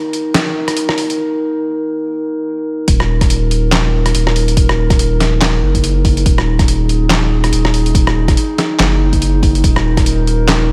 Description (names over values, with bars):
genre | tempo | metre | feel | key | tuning
deep dubstep | 142 BPM | 4/4 | swing 58% on 16ths, half-time | Eb minor | A4 = 444 Hz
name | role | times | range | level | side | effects
dark analog pad | sustained chords | 0.0-10.7 s | Eb4 to Bb4 | -21 LUFS | equal | chorus
trip hop sampler-style drum kit | drums | 0.1-10.6 s | handclaps, hi-hat, rim click, snare drum | -20 LUFS | equal | studio reverb
saturated sub bass | bass | 2.9-10.7 s | Eb1 to Gb1 | -16 LUFS | equal | none
electronic kick drum | drums | 2.9-10.0 s | none | -16 LUFS | equal | studio reverb
room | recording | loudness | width
digital ambience | none | -14 LUFS | mono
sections
0.0-2.9 A section; 2.9-10.7 B section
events
build-up 0.0-2.9; break 1.2-2.9; drop 2.9-10.7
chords
0.0 Eb5; 2.9 Ebm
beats
0.34 0.77 | 1.19 1.61 2.03 2.46 | 2.88 3.30 3.72 4.15 | 4.57 4.99 5.41 5.84 | 6.26 6.68 7.10 7.53 | 7.95 8.37 8.79 9.22 | 9.64 10.06 10.48